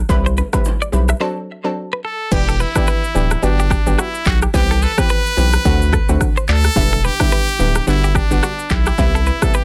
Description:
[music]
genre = afrobeats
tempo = 108 BPM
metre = 4/4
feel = swing 58% on 16ths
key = G major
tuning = A4 = 441 Hz
[part]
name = saturated sub bass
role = bass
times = 0.0-9.3 s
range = D1 to D2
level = -19 LUFS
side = equal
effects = none
[part]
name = analog pluck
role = accompaniment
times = 0.1-9.6 s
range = C3 to B4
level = -24 LUFS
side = equal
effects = chorus
[part]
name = deep house drum kit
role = drums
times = 0.1-9.6 s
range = crash cymbal, handclaps, kick drum, rim click, shaker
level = -20 LUFS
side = equal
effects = none
[part]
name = congas and bongos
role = percussion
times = 0.1-0.8 s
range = none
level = -33 LUFS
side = equal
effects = none
[part]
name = direct-recorded clean electric guitar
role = riff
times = 0.3-9.6 s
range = F#4 to E5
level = -26 LUFS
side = equal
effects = none
[part]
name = brilliant trumpet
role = melody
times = 2.1-9.6 s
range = D4 to B4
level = -24 LUFS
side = equal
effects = none
[sound]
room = little or no reverb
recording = dense, heavily limited modern master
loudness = -16 LUFS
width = mono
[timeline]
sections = 0.0-2.3 A section; 2.3-9.6 B section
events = break 1.2-2.3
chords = 0.1 Cmaj7; 1.2 D7; 2.3 Em7; 3.4 Gmaj7; 4.5 Cmaj7; 5.7 D7; 6.8 Em7; 7.9 Gmaj7; 9.0 Cmaj7

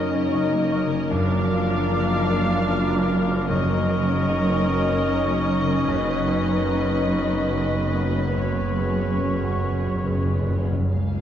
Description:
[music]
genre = cinematic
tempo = 70-77 BPM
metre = 3/4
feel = rubato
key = unclear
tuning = A4 = 438 Hz
[part]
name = muted studio violin section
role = melody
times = 0.0-11.2 s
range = C#5 to E#5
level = -33 LUFS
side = left 2 dB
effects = none
[part]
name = muted studio violin section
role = second line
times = 0.0-11.2 s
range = Ab4 to B4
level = -33 LUFS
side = left 2 dB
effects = none
[part]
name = warm clarinet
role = second line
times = 0.0-10.6 s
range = A#4 to B4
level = -35 LUFS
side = left 3 dB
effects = none
[part]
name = warm oboe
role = second line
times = 0.0-10.5 s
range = C#5 to E#5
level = -34 LUFS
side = right 3 dB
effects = none
[part]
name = muted symphonic viola section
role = accompaniment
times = 0.0-11.2 s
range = Bb3 to D4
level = -32 LUFS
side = right 2 dB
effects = none
[part]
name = warm concert grand piano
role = accompaniment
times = 0.0-11.2 s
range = Db2 to G#4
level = -28 LUFS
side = equal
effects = none
[part]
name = mellow French horn section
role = sustained chords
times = 0.0-11.2 s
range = A#3 to F4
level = -30 LUFS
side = left 3 dB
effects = none
[part]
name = concert harp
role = arpeggios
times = 0.0-11.2 s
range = F#2 to G#4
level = -32 LUFS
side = left 7 dB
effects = none
[part]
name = muted symphonic cello section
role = bass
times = 0.0-11.2 s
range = Db2 to F#2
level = -27 LUFS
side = right 2 dB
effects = none
[part]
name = muted symphonic double bass section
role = bass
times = 0.0-11.2 s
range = F#1 to Db2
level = -28 LUFS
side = right 3 dB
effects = none
[part]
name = mellow hollow silver concert flute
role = second line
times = 0.3-10.5 s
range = C#6 to D6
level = -33 LUFS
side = left 1 dB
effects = none
[part]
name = timpani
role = percussion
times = 1.1-10.9 s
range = F#2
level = -29 LUFS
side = equal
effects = none
[sound]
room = moderate scoring stage reverb, RT60 1.9 s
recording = dark, warm production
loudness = -20 LUFS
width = side -10 dB against mid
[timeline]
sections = 0.0-10.9 A section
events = timpani fill 8.4-10.9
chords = 0.0 D#m7/F#; 1.1 A#/F#; 3.5 D#m7/F#; 5.9 Badd9/F#; 8.4 C#7sus4/F#

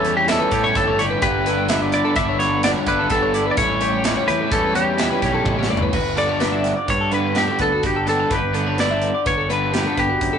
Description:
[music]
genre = math rock and midwest emo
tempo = 127 BPM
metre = 5/4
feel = straight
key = G lydian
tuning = A4 = 440 Hz
[part]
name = twelve-string electric guitar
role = melody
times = 0.0-10.4 s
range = G4 to E5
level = -21 LUFS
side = equal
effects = none
[part]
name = twangy electric guitar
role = accompaniment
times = 0.0-10.4 s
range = E2 to G4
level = -26 LUFS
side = right 4 dB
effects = none
[part]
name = twelve-string electric guitar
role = arpeggios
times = 0.0-10.4 s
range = F#4 to G5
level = -26 LUFS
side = left 4 dB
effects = none
[part]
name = crunchy overdriven guitar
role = riff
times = 0.0-10.0 s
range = G2 to E4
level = -24 LUFS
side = equal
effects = none
[part]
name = fuzz fingered electric bass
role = bass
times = 0.0-10.4 s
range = G1 to A2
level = -26 LUFS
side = equal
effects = overdrive
[part]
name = modern studio drum kit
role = drums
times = 0.0-10.3 s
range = crash cymbal, hi-hat, kick drum, snare drum, toms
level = -25 LUFS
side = right 1 dB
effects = none
[sound]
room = moderate small room reverb, RT60 0.5 s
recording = rough rehearsal-room recording, warm saturation, nothing above 10.3 kHz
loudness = -17 LUFS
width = side -7 dB against mid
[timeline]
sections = 0.0-5.9 A section; 5.9-10.4 B section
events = drum fill 5.5-5.9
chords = 0.0 A7; 1.2 G6; 3.6 A7; 5.9 Gmaj9

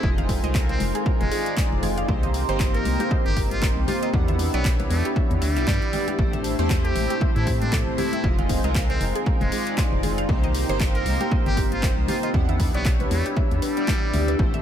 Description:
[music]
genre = deep house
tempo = 117 BPM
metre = 4/4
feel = swing 57% on 16ths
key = unclear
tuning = A4 = 440 Hz
[part]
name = trumpet with metal mute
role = melody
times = 0.0-14.3 s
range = G3 to Bb4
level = -32 LUFS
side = equal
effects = analog delay
[part]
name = hollow soft pad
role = sustained chords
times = 0.0-14.6 s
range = D4 to E6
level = -33 LUFS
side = right 2 dB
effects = chorus, sidechain pumping
[part]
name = chorused polysynth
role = stabs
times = 0.0-14.6 s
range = Ab3 to F#5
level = -28 LUFS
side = left 1 dB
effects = sidechain pumping, tape echo
[part]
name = organ-like FM bass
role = bass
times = 0.0-14.6 s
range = F1 to A2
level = -26 LUFS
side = equal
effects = tube saturation, sidechain pumping
[part]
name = electronic kick drum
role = drums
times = 0.0-14.5 s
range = none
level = -23 LUFS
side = equal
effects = overdrive
[part]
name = deep dark ambient pad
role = texture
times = 0.0-14.6 s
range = C4 to F5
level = -32 LUFS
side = left 1 dB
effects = chorus, built-in reverb, sidechain pumping
[part]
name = mallet-like synth pluck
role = arpeggios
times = 0.2-14.6 s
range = G4 to B5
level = -34 LUFS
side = right 3 dB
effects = chorus, phaser, sidechain pumping, analog delay
[part]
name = deep house drum kit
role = drums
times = 0.2-14.6 s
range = handclaps, hi-hat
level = -34 LUFS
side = left 1 dB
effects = none
[part]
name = congas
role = percussion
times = 0.2-14.6 s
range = none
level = -34 LUFS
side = left 5 dB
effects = none
[sound]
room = light reverb, digital ambience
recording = none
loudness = -20 LUFS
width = side -10 dB against mid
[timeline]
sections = 0.0-14.6 A section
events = none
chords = 0.0 Fm7; 2.1 Cm7; 4.1 Em7; 6.2 Am7; 8.2 Fm7; 10.3 Cm7; 12.3 Em7

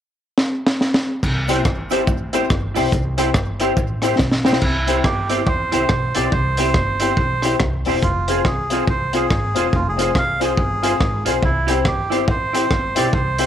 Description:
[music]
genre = ska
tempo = 141 BPM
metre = 4/4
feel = swing 61% on 8ths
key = C major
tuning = A4 = 440 Hz
[part]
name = crunchy breakbeat drum kit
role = drums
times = 0.4-13.5 s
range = crash cymbal, hi-hat, kick drum, rim click, snare drum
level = -20 LUFS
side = equal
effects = none
[part]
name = upright bass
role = bass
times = 1.2-13.5 s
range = E1 to E2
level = -24 LUFS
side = equal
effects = tube saturation
[part]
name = cabasa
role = percussion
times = 1.2-4.5 s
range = none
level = -42 LUFS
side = right 14 dB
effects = none
[part]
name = semi-hollow electric guitar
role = accompaniment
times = 1.5-13.5 s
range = E4 to C5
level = -24 LUFS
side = right 11 dB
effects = ensemble chorus, slapback echo
[part]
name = warm upright piano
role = stabs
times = 1.5-13.5 s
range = C4 to C5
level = -23 LUFS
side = left 10 dB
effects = none
[part]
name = melodica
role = melody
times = 4.6-13.5 s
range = E4 to F5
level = -22 LUFS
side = right 3 dB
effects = none
[sound]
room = moderate spring reverb, RT60 1.9 s, small room reverb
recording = 1960s-style stereo with parts hard left and right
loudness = -16 LUFS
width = side -10 dB against mid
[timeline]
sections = 0.0-1.2 A section; 1.2-4.6 B section; 4.6-13.5 C section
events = drum fill 0.4-1.2, 4.2-4.6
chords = 0.0 N.C.; 1.2 C; 8.0 Fm; 11.4 C

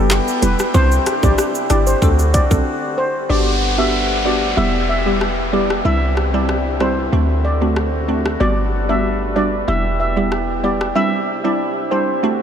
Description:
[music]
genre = dancehall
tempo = 94 BPM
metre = 4/4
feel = straight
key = G major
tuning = A4 = 443 Hz
[part]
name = glassy wavetable pluck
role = accompaniment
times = 0.0-12.4 s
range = G3 to A4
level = -20 LUFS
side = equal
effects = chorus, sidechain pumping
[part]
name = dark brass ensemble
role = sustained chords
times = 0.0-12.4 s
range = C3 to F#5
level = -23 LUFS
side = left 1 dB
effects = stereo widening, sidechain pumping
[part]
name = warm 808-style bass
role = bass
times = 0.0-10.9 s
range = E1 to D2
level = -19 LUFS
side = equal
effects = none
[part]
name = island pop drum kit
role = drums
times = 0.1-10.9 s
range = handclaps, hi-hat, kick drum, rim click, shaker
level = -23 LUFS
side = equal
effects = overdrive
[part]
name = steel pan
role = melody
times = 0.4-12.1 s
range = B4 to E5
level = -22 LUFS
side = equal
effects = analog delay
[part]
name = downlifter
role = sound effects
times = 3.3-8.4 s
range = none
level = -26 LUFS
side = equal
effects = none
[sound]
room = moderate huge ambient reverb, RT60 7.5 s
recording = dreamy mix soaked in reverb, faint mains hum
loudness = -15 LUFS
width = side -8 dB against mid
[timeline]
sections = 0.0-3.3 A section; 3.3-12.4 B section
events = break 2.7-3.3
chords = 0.0 Em; 0.7 Cadd9; 2.0 D7; 3.3 Gmaj7; 4.6 Em; 5.8 Cadd9; 7.1 D7; 8.4 Gmaj7; 9.7 Em; 11.0 Cadd9

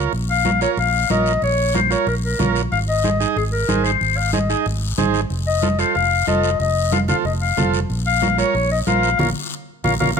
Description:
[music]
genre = latin, cumbia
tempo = 185 BPM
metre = 4/4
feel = straight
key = Bb minor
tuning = A4 = 442 Hz
[part]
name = combo organ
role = accompaniment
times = 0.0-10.2 s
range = Eb4 to Eb5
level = -24 LUFS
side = right 10 dB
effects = none
[part]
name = fingered electric bass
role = bass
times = 0.0-10.2 s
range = F1 to Bb1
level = -22 LUFS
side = equal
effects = none
[part]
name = congas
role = percussion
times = 0.1-10.2 s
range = none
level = -25 LUFS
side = equal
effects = none
[part]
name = guiro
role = percussion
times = 0.1-10.2 s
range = none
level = -31 LUFS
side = left 9 dB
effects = none
[part]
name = warm clarinet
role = melody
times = 0.3-10.2 s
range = Ab4 to F5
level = -20 LUFS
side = left 5 dB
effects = none
[sound]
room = light reverb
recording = close, detailed microphones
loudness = -16 LUFS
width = side -6 dB against mid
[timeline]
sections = 0.1-10.2 A section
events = band accent 9.2-10.2; drum fill 9.8-10.2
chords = 0.1 Bbm; 2.7 Ab; 5.3 F7; 7.9 Bbm

